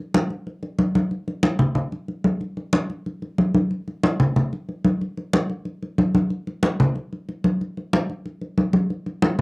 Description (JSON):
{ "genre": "latin", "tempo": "185 BPM", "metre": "4/4", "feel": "straight", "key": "none", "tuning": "none", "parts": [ { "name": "congas", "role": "percussion", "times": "0.1-9.4 s", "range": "none", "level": "-20 LUFS", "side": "equal", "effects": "none" } ], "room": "moderate booth ambience, RT60 0.1 s", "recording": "dry, close 1970s-style studio recording", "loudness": "-20 LUFS", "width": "side -27 dB against mid", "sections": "0.0-2.4 A section; 2.4-9.4 B section", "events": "none", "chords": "none" }